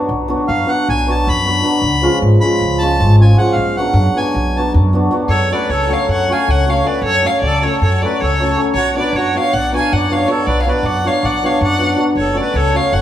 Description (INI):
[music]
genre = balkan folk, Balkan wedding band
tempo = 313 BPM (eighths)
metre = 9/8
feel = straight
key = B dorian sharp4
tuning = A4 = 441 Hz
[part]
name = hammered dulcimer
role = accompaniment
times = 0.0-13.0 s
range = E#3 to F#4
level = -18 LUFS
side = left 1 dB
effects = none
[part]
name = upright bass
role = bass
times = 0.1-13.0 s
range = F#1 to F#2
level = -16 LUFS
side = equal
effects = none
[part]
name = accordion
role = second line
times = 0.5-13.0 s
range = F#4 to B5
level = -20 LUFS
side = equal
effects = none
[part]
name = rich violin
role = melody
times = 5.3-13.0 s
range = C#5 to G#5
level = -18 LUFS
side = equal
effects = none
[sound]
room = wet large studio reverb, RT60 1.3 s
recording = band playing live in one room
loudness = -12 LUFS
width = side -11 dB against mid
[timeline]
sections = 0.0-5.3 A section; 5.3-13.0 B section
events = accordion solo 0.0-5.3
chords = 0.0 Bm; 1.8 C#; 3.6 Bm; 5.3 F#m; 8.7 Bm; 12.2 F#m